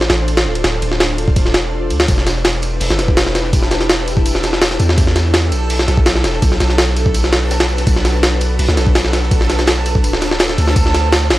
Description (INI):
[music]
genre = drum and bass, jungle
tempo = 166 BPM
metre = 4/4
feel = straight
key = E minor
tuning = A4 = 442 Hz
[part]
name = ethereal airy pad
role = sustained chords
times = 0.0-11.4 s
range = D4 to C5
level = -22 LUFS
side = equal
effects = ensemble chorus, built-in reverb
[part]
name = long sustained 808-style bass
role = bass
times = 0.0-11.4 s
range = D1 to E2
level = -17 LUFS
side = equal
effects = none
[part]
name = jungle sampler-style drum kit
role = drums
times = 0.0-11.4 s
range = kick drum, ride cymbal, snare drum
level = -14 LUFS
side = equal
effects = none
[part]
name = crunchy breakbeat drum kit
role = drums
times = 2.1-11.4 s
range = hi-hat, snare drum, tambourine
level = -28 LUFS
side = left 1 dB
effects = none
[part]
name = backwards swelling texture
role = texture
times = 2.8-11.4 s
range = A4 to A5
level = -26 LUFS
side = right 2 dB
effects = built-in reverb
[sound]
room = studio reverb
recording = dry, gritty hardware recording, vinyl crackle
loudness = -12 LUFS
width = side -16 dB against mid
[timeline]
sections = 0.0-11.4 A section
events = none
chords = 0.0 Dm7; 2.1 Em7; 6.4 Bm7; 10.0 Dm7